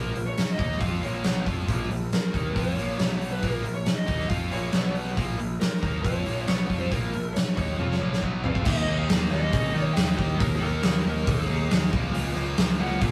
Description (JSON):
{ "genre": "hard rock", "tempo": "137 BPM", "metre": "4/4", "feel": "straight", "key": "Bb minor", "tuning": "A4 = 440 Hz", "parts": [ { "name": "smooth overdriven lead guitar", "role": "melody", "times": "0.0-13.1 s", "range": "Bb4 to G5", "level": "-35 LUFS", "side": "equal", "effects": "none" }, { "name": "cranked stack guitar", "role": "riff", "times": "0.0-13.1 s", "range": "Bb2 to F4", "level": "-39 LUFS", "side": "equal", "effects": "overdrive" }, { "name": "overdriven electric guitar", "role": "riff", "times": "0.0-13.1 s", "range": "Bb2 to F4", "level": "-36 LUFS", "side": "equal", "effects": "none" }, { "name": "fuzz picked electric bass", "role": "bass", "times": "0.0-13.1 s", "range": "Bb1 to Eb3", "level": "-32 LUFS", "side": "equal", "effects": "overdrive" }, { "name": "huge arena drum kit", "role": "drums", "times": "0.2-13.1 s", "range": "crash cymbal, hi-hat, kick drum, snare drum, toms", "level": "-28 LUFS", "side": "equal", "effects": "none" } ], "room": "light reverb", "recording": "rough rehearsal-room recording", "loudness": "-26 LUFS", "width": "mono", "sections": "0.0-8.7 A section; 8.7-13.1 B section", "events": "drum fill 7.8-8.7", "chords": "0.0 Bbm; 3.0 B5; 3.4 Bb5; 4.7 B5; 5.2 Bbm; 8.7 Eb5; 11.9 Bbm/Db" }